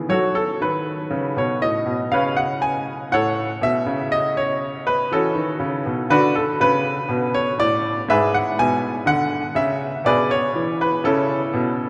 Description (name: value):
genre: classical, baroque-style suite movement for grand piano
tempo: 60 BPM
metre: 3/4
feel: rubato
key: unclear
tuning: A4 = 440 Hz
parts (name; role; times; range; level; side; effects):
- clear baby grand piano; solo; 0.0-11.9 s; G#2 to G#5; -21 LUFS; equal; none
room: wet cathedral reverb, RT60 5.3 s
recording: in a vast, echoing space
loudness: -21 LUFS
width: mono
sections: 0.0-11.9 A section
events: none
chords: 0.1 F#m; 2.1 C#5; 3.1 F#m/A; 6.1 D5; 8.1 G#m7; 9.1 E7(no3); 11.0 A/C#